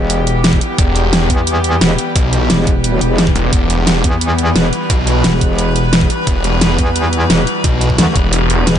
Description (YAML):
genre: dark technical drum and bass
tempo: 175 BPM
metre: 4/4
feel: straight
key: E minor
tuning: A4 = 440 Hz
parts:
  - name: metallic inharmonic drone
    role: sustained chords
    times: 0.0-8.8 s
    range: E3 to B4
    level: -18 LUFS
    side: left 1 dB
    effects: chorus, built-in reverb, sidechain pumping
  - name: metallic wobble bass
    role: bass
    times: 0.0-8.8 s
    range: E1 to E2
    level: -15 LUFS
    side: equal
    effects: chorus
  - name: dubstep drum kit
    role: drums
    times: 0.1-8.7 s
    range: hi-hat, snare drum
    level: -15 LUFS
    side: right 1 dB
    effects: overdrive
  - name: electronic kick drum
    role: drums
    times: 0.5-8.8 s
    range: none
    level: -15 LUFS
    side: equal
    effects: none
  - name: snarling distorted saw bass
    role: bass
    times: 0.8-8.7 s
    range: E1 to B1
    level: -15 LUFS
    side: equal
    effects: distortion, tube saturation, sidechain pumping
room: digital ambience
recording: nothing above 10.4 kHz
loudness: -11 LUFS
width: side -9 dB against mid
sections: 0.0-8.8 A section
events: none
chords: 0.0 Em